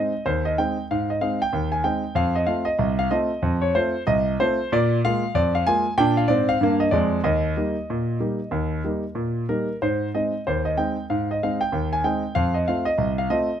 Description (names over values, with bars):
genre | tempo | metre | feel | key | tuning
ragtime piano | 94 BPM | 2/4 | swing 59% on 16ths | Ab major | A4 = 440 Hz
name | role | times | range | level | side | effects
warm concert grand piano | solo | 0.0-13.6 s | C2 to Ab5 | -20 LUFS | equal | none
room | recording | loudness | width
light reverb | close, detailed microphones | -20 LUFS | side -9 dB against mid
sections
0.0-13.6 A section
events
none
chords
0.0 Ab; 2.2 F; 4.7 Bb7; 7.3 Eb; 9.8 Ab; 12.4 F